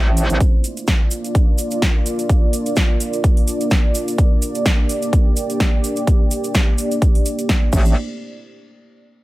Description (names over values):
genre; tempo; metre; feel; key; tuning
bass house; 127 BPM; 4/4; swing 55% on 16ths; unclear; A4 = 441 Hz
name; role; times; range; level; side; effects
dark analog pad; sustained chords; 0.0-7.9 s; A3 to D5; -23 LUFS; right 1 dB; chorus, sidechain pumping
metallic wobble bass; bass; 0.0-0.4, 7.7-7.9 s; A1; -17 LUFS; equal; chorus, overdrive, sidechain pumping
big-room dance drum kit; drums; 0.2-7.8 s; crash cymbal, hi-hat, snare drum; -23 LUFS; equal; none
cabasa; percussion; 0.2-7.9 s; none; -30 LUFS; right 2 dB; none
electronic kick drum; drums; 0.4-7.8 s; none; -15 LUFS; equal; none
room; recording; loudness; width
little or no reverb; none; -15 LUFS; side -18 dB against mid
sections
0.0-8.0 A section; 8.0-9.2 B section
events
none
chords
0.4 Bb; 7.7 Am; 8.0 N.C.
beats
| 0.41 0.88 1.35 1.82 | 2.29 2.77 3.24 3.71 | 4.18 4.66 5.13 5.60 | 6.07 6.55 7.02 7.49